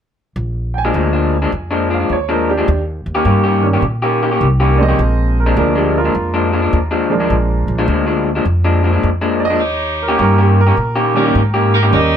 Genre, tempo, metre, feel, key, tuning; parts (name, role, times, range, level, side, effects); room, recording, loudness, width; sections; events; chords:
electric blues shuffle; 104 BPM; 4/4; swing 67% on 8ths; Bb mixolydian; A4 = 440 Hz
upright bass; bass; 0.4-12.2 s; Bb1 to Bb2; -16 LUFS; equal
warm upright piano; accompaniment; 0.7-12.2 s; Eb3 to Ab5; -19 LUFS; right 4 dB
electric guitar through a small old amp; riff; 0.8-12.0 s; Bb2 to G4; -16 LUFS; left 2 dB
bright saxophone section; stabs; 9.6-12.2 s; Eb4 to Eb5; -19 LUFS; right 2 dB
light reverb; -12 LUFS; side -8 dB against mid
0.4-12.2 A section
0.4 Bb7; 2.7 Eb7; 5.0 Bb7; 9.6 Eb7